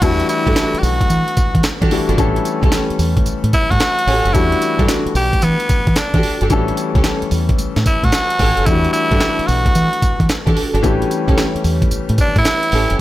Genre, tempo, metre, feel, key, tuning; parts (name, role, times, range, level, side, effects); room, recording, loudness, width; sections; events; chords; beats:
R&B, new jack swing; 111 BPM; 4/4; swing 66% on 16ths; E dorian; A4 = 435 Hz
raspy tenor saxophone; melody; 0.0-13.0 s; B3 to G4; -18 LUFS; equal
clear grand piano; accompaniment; 0.0-13.0 s; E3 to A4; -21 LUFS; left 4 dB
deep dub fingered electric bass; bass; 0.0-13.0 s; F#1 to E3; -18 LUFS; equal
breakbeat sampler-style drum kit; drums; 0.0-13.0 s; crash cymbal, handclaps, hi-hat, kick drum, snare drum, tambourine; -18 LUFS; equal
warm studio string section; stabs; 0.5-12.9 s; C#4 to A4; -23 LUFS; right 2 dB; tape echo
small room ambience; -13 LUFS; side -15 dB against mid
0.0-13.0 A section
0.0 Em11; 2.2 A7; 4.3 Em11; 6.5 A7; 8.7 Em11; 10.8 A7
| 0.02 0.56 1.10 1.64 | 2.18 2.72 3.26 3.80 | 4.34 4.88 5.42 5.96 | 6.51 7.05 7.59 8.13 | 8.67 9.21 9.75 10.29 | 10.83 11.37 11.91 12.45 | 12.99